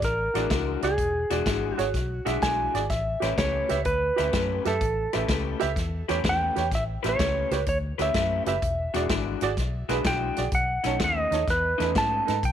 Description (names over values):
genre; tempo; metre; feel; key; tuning
electric blues shuffle; 126 BPM; 4/4; swing 67% on 8ths; E mixolydian; A4 = 440 Hz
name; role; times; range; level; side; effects
clean lap steel guitar; melody; 0.0-12.5 s; G#4 to A5; -27 LUFS; right 1 dB; none
vintage muted fingered electric bass; bass; 0.0-12.5 s; E1 to G#2; -30 LUFS; left 1 dB; none
natural country drum kit; drums; 0.0-12.5 s; hi-hat, kick drum, snare drum; -30 LUFS; equal; none
warm upright piano; accompaniment; 0.3-12.4 s; D#4 to E5; -31 LUFS; right 11 dB; none
electric guitar through a small old amp; riff; 0.4-12.3 s; B2 to B4; -32 LUFS; left 14 dB; none
room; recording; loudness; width
light reverb, small room ambience; 1960s-style stereo with parts hard left and right; -23 LUFS; side -10 dB against mid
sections
0.0-12.5 A section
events
none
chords
0.0 E9; 2.9 A9; 8.6 E9; 10.5 B9